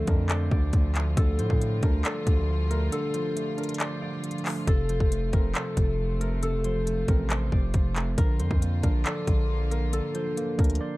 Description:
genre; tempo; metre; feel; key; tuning
hip hop, trap; 137 BPM; 4/4; half-time; D minor; A4 = 441 Hz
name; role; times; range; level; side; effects
concert harp; melody; 0.0-11.0 s; A4 to D5; -33 LUFS; left 2 dB; low-pass filter
tine electric piano; accompaniment; 0.0-11.0 s; C3 to D5; -32 LUFS; right 3 dB; overdrive, low-pass filter
warm studio string section; sustained chords; 0.0-11.0 s; C3 to F4; -38 LUFS; left 1 dB; none
distorted 808-style bass; bass; 0.0-10.8 s; F1 to A2; -27 LUFS; equal; distortion
trap drum kit; drums; 0.1-10.8 s; handclaps, hi-hat, kick drum; -25 LUFS; equal; none
room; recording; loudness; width
little or no reverb; dark, warm production; -23 LUFS; side -19 dB against mid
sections
0.0-11.0 A section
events
break 2.9-4.7, 10.8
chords
0.0 Dm; 4.7 F; 8.2 Bb

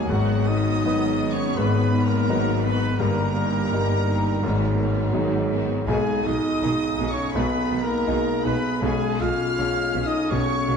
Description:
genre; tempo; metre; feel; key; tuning
classical; 82 BPM; 4/4; uneven beats, rubato; unclear; A4 = 443 Hz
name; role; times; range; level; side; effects
clear grand piano; melody; 0.0-10.8 s; G1 to Cb5; -25 LUFS; left 3 dB; none
clear symphonic violin section; melody; 0.0-10.8 s; Gb5 to E#6; -34 LUFS; left 3 dB; none
clear clarinet; second line; 0.0-10.8 s; Cb4 to Eb4; -35 LUFS; right 4 dB; none
mellow cor anglais; second line; 0.0-10.8 s; Gb4 to E#5; -35 LUFS; right 3 dB; none
rich symphonic violin section; second line; 0.0-10.8 s; C#4 to G#4; -37 LUFS; left 2 dB; none
small flute group; second line; 0.0-10.8 s; Gb5 to E#6; -34 LUFS; equal; none
mellow bassoon; accompaniment; 0.0-10.8 s; Gb3 to G#3; -34 LUFS; right 2 dB; none
warm symphonic viola section; accompaniment; 0.0-10.8 s; Eb3 to Cb4; -33 LUFS; right 2 dB; none
mellow French horn section; sustained chords; 0.0-10.8 s; Gb3 to E#4; -27 LUFS; left 1 dB; none
clear trumpet; stabs; 0.0-10.8 s; Gb4 to E#5; -32 LUFS; right 2 dB; none
bright symphonic cello section; bass; 0.1-10.8 s; G2 to B2; -31 LUFS; right 3 dB; none
rich symphonic double bass section; bass; 0.1-10.8 s; G1 to B1; -32 LUFS; right 5 dB; none
room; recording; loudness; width
moderate scoring stage reverb, RT60 1.7 s; dark, warm production; -20 LUFS; side -6 dB against mid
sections
0.0-10.8 A section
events
none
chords
0.1 Abm7; 3.0 Eb/G; 4.4 Abm7; 5.9 G#m/B; 8.8 C#7/B

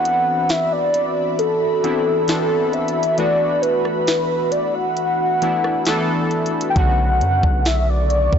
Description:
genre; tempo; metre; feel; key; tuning
contemporary R&B; 67 BPM; 4/4; straight; unclear; A4 = 438 Hz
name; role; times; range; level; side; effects
warm velvety synth lead; melody; 0.0-8.4 s; A4 to G5; -19 LUFS; equal; chorus
warm analog keys; accompaniment; 0.0-8.4 s; C#3 to A4; -23 LUFS; left 2 dB; chorus
ethereal airy pad; sustained chords; 0.0-8.4 s; F#4 to C#6; -26 LUFS; left 1 dB; ensemble chorus, built-in reverb
trap drum kit; drums; 0.1-8.4 s; hi-hat, kick drum, rim click, snare drum; -22 LUFS; equal; vintage 12-bit sampler grit
long sustained 808-style bass; bass; 6.8-8.4 s; B1 to F#2; -19 LUFS; equal; none
room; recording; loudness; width
light reverb; blown-out, overdriven recording, overdrive, nothing above 7.8 kHz; -16 LUFS; side -8 dB against mid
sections
0.0-8.4 A section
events
break 0.0-6.8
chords
0.0 Cmaj9#11; 3.2 D69; 6.8 Bm9

